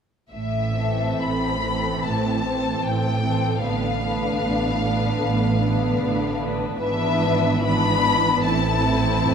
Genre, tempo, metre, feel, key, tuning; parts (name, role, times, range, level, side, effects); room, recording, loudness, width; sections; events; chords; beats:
classical, slow romantic movement for string orchestra; 65-78 BPM; 4/4; rubato; A minor; A4 = 441 Hz
warm symphonic violin section; melody; 0.3-9.3 s; E5 to B5; -25 LUFS; left 5 dB
rich symphonic cello section; bass; 0.3-9.3 s; F2 to A2; -27 LUFS; right 4 dB
warm symphonic double bass section; bass; 0.3-9.3 s; F1 to A1; -27 LUFS; right 3 dB
warm symphonic violin section; second line; 0.8-9.3 s; C4 to B4; -26 LUFS; left 3 dB
dark chamber viola section; accompaniment; 0.8-9.3 s; D3 to C4; -26 LUFS; right 2 dB
wet concert hall reverb, RT60 2.4 s; minimal, uncompressed stereo recording; -19 LUFS; side -7 dB against mid
0.3-9.3 A section
0.3 Am; 3.6 Bm7b5/A; 6.8 E7/G#; 8.5 Am
| 0.32 1.22 2.06 2.85 | 3.64 4.44 5.22 6.01 | 6.81 7.65 8.46 9.27